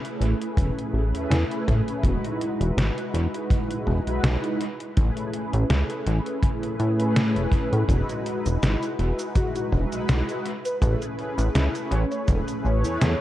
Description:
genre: vaporwave.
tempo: 82 BPM.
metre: 4/4.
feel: swing 54% on 16ths.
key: A lydian.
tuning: A4 = 441 Hz.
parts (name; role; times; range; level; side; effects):
mellow synth brass; accompaniment; 0.0-13.2 s; G#3 to B4; -28 LUFS; equal; ensemble chorus, tape echo.
detuned 8-bit digital drum machine; drums; 0.0-13.2 s; cabasa, hi-hat, snare drum; -28 LUFS; equal; overdrive, tape echo.
chorused synth bass; bass; 0.2-13.2 s; E1 to A2; -23 LUFS; equal; none.
kick drum; drums; 0.6-12.4 s; none; -26 LUFS; equal; none.
warm velvety synth lead; melody; 9.4-13.2 s; F#4 to C#5; -33 LUFS; left 1 dB; chorus, cassette tape, tape echo.
room: light reverb.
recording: echo-heavy mix, cassette tape.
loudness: -22 LUFS.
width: side -14 dB against mid.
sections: 0.0-13.2 A section.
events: none.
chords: 0.0 Amaj9; 2.0 Emaj9; 4.6 Amaj9; 7.9 Emaj9; 10.5 Amaj9.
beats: 0.58 1.31 | 2.04 2.77 3.50 4.24 | 4.97 5.70 6.43 7.16 | 7.89 8.62 9.36 10.09 | 10.82 11.55 12.28 13.02.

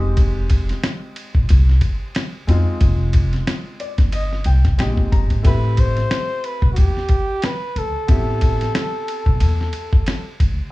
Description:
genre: hip hop, jazz-hop.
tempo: 91 BPM.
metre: 4/4.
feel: swing 58% on 16ths.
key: A minor.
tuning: A4 = 438 Hz.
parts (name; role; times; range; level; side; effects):
clear upright piano; accompaniment; 0.0-10.7 s; Ab3 to Bb5; -29 LUFS; left 2 dB; none.
upright bass; bass; 0.0-10.6 s; F1 to F2; -18 LUFS; equal; none.
lo-fi sampler-style drum kit; drums; 0.2-10.6 s; hi-hat, kick drum, ride cymbal, snare drum; -18 LUFS; equal; none.
trumpet with bucket mute; melody; 5.5-10.4 s; F#4 to C5; -24 LUFS; equal; none.
room: little or no reverb.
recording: small room ambience.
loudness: -16 LUFS.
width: side -19 dB against mid.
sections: 0.0-10.7 A section.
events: upright piano fill 3.5-5.4.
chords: 0.0 Fm9; 5.4 Am9.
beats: | 0.17 0.83 1.49 2.15 | 2.81 3.47 4.13 4.79 | 5.45 6.11 6.77 7.43 | 8.09 8.75 9.40 10.06.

